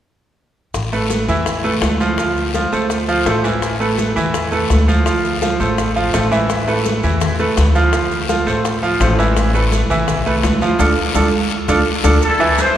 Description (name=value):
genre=latin, salsa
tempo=167 BPM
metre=4/4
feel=straight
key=A minor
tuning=A4 = 440 Hz
part: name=upright bass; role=bass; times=0.7-12.2 s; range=A1 to E2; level=-19 LUFS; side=equal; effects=none
part: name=bongos and cowbell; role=percussion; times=0.7-12.8 s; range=none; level=-25 LUFS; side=left 5 dB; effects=none
part: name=congas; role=percussion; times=0.7-12.8 s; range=none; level=-25 LUFS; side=equal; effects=none
part: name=guiro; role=percussion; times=0.7-12.8 s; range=none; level=-28 LUFS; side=left 6 dB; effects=none
part: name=maracas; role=percussion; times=0.7-12.8 s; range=none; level=-34 LUFS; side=right 5 dB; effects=none
part: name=bright concert grand piano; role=accompaniment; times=0.9-12.7 s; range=E3 to F5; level=-17 LUFS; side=right 2 dB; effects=none
part: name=bright trumpet section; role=melody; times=12.2-12.8 s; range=E4 to C5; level=-15 LUFS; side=equal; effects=none
room=wet church reverb, RT60 3.0 s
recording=recorded in a church or concert hall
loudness=-14 LUFS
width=side -11 dB against mid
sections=0.7-12.2 A section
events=drum fill 10.8-12.2; band accent 10.8-12.2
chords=0.7 Asus2; 2.2 Dm7; 3.6 Asus2; 5.1 Dm7; 6.5 Asus2; 7.9 Dm7; 9.4 Amadd9; 10.8 Dm; 12.2 Am